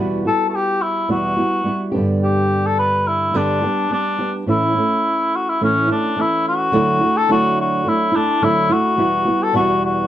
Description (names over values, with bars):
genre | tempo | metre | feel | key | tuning
acoustic pop | 107 BPM | 4/4 | straight | D major | A4 = 440 Hz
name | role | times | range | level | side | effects
flamenco guitar | accompaniment | 0.0-10.1 s | E2 to G4 | -19 LUFS | right 2 dB | none
mellow cor anglais | melody | 0.3-10.1 s | C#4 to B4 | -18 LUFS | left 2 dB | plate reverb
room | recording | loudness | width
moderate studio reverb, RT60 0.5 s | dark, warm production | -15 LUFS | side -11 dB against mid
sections
0.0-6.7 A section; 6.7-10.1 B section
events
none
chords
0.0 Emadd9; 1.9 G; 4.5 A; 6.7 Dadd9; 9.0 Emadd9